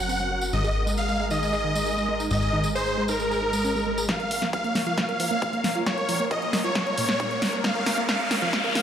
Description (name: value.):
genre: uplifting trance.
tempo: 135 BPM.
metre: 4/4.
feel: straight.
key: Bb minor.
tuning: A4 = 440 Hz.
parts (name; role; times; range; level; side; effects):
supersaw chords; melody; 0.0-8.8 s; Bb4 to Gb5; -26 LUFS; equal; sidechain pumping, tape echo.
lush unison pad; sustained chords; 0.0-8.8 s; Ab3 to F5; -33 LUFS; left 2 dB; chorus, phaser, sidechain pumping.
wide unison pluck; arpeggios; 0.0-8.8 s; Ab2 to Bb4; -30 LUFS; right 2 dB; sidechain pumping, dub echo.
plucky analog bass; bass; 0.0-4.1 s; Gb1 to Ab1; -30 LUFS; left 1 dB; sidechain pumping.
tambourine; percussion; 0.1-4.1 s; none; -36 LUFS; right 2 dB; none.
electronic kick drum; drums; 4.1-8.6 s; none; -33 LUFS; equal; high-pass filter on kick.
punchy analog drum machine; drums; 4.1-8.8 s; hi-hat, snare drum; -27 LUFS; left 1 dB; overdrive, sidechain pumping on hats.
riser; sound effects; 5.1-8.8 s; none; -32 LUFS; left 1 dB; none.
room: light reverb.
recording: played on a big sound system in a bare room, large studio reverb, high-pass filter.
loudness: -22 LUFS.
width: side -9 dB against mid.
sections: 0.0-4.1 A section; 4.1-8.8 B section.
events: build-up 4.1-8.8; drum fill 4.1-8.8; filter sweep on synth pluck 4.1-8.8; riser 5.1-8.8.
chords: 0.0 Gb; 0.5 Absus2; 4.1 Bbm.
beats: 0.09 | 0.53 0.98 1.42 1.86 | 2.31 2.75 3.20 3.64 | 4.09 4.53 4.98 5.42 | 5.87 6.31 6.75 7.20 | 7.64 8.09 8.53.